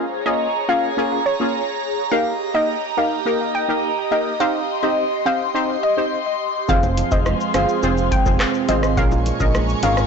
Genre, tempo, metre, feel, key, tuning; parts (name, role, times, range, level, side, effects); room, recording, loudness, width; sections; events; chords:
dancehall; 105 BPM; 4/4; straight; F minor; A4 = 440 Hz
synth brass stab; accompaniment; 0.0-10.0 s; Bb3 to C5; -23 LUFS; equal; chorus, sidechain pumping
airy breathy pad; sustained chords; 0.0-10.1 s; G4 to Db6; -24 LUFS; right 1 dB; chorus, phaser, sidechain pumping
analog pluck; melody; 0.3-10.0 s; Db5 to G5; -23 LUFS; left 1 dB; chorus, tape echo
fingerpicked steel-string acoustic guitar; arpeggios; 6.7-10.1 s; F2 to Db4; -24 LUFS; right 10 dB
fat analog bass; bass; 6.7-10.1 s; F1 to Bb1; -22 LUFS; equal
booming analog drum machine; drums; 6.7-10.1 s; handclaps, hi-hat, kick drum, rim click, shaker; -21 LUFS; equal
bongos; percussion; 6.8-10.0 s; -32 LUFS; left 6 dB
light reverb; blown-out, overdriven recording, overdrive, nothing above 7.9 kHz; -17 LUFS; side -6 dB against mid
0.0-10.1 A section
0.0 Bbm7; 2.1 Eb; 4.4 Cm; 6.7 Fm; 9.0 Bbm7